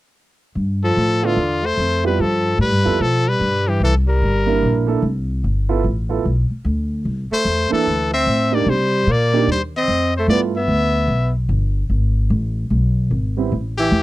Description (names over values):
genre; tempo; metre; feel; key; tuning
jazz; 148 BPM; 4/4; swing 64% on 8ths; G mixolydian; A4 = 440 Hz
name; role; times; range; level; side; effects
upright bass; bass; 0.6-14.0 s; G1 to C3; -19 LUFS; equal; none
brilliant trumpet; melody; 0.8-4.8, 7.3-11.3, 13.8-14.0 s; F4 to E5; -20 LUFS; left 3 dB; none
warm tenor saxophone; second line; 0.8-4.8, 7.3-11.3, 13.8-14.0 s; D3 to C4; -21 LUFS; right 2 dB; none
warm concert grand piano; accompaniment; 1.2-10.5, 13.4-13.5 s; G3 to Bb4; -20 LUFS; right 7 dB; none
room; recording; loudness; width
little or no reverb; dry, close 1970s-style studio recording; -16 LUFS; side -16 dB against mid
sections
0.6-14.0 A section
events
none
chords
0.6 G13; 3.8 C9; 5.4 G13; 7.0 C13; 8.7 Cm7; 10.3 G13; 11.9 E (rootless); 13.5 A7(no3)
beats
| 0.56 0.97 1.38 1.78 | 2.19 2.59 3.00 3.40 | 3.81 4.21 4.62 5.02 | 5.43 5.83 6.24 6.64 | 7.05 7.45 7.86 8.26 | 8.66 9.07 9.47 9.88 | 10.28 10.69 11.09 11.49 | 11.90 12.30 12.71 13.11 | 13.52 13.92